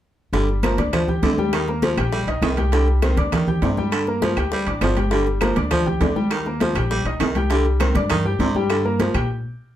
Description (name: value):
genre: latin, salsa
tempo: 201 BPM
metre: 4/4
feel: straight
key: G minor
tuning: A4 = 440 Hz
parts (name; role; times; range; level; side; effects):
- breathy baritone saxophone; second line; 0.3-9.2 s; C3 to G3; -25 LUFS; right 1 dB; none
- bright upright piano; accompaniment; 0.3-9.3 s; G3 to G6; -25 LUFS; left 2 dB; none
- upright bass; bass; 0.3-9.4 s; G1 to Bb2; -23 LUFS; equal; none
- bongos; percussion; 0.3-9.3 s; none; -29 LUFS; left 4 dB; none
- congas; percussion; 0.3-9.3 s; none; -25 LUFS; equal; none
- timbales; percussion; 0.3-9.3 s; none; -28 LUFS; right 4 dB; none
- claves; percussion; 0.6-9.3 s; none; -35 LUFS; left 4 dB; none
room: wet small room reverb, RT60 0.5 s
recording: heard from further back in the room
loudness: -18 LUFS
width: side -12 dB against mid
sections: 0.3-9.8 A section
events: stop 9.3-9.8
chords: 0.3 Gm7; 1.5 Eb; 2.7 Cmadd9; 3.9 Gm7; 6.3 Eb; 7.5 Cmadd9; 8.7 Gm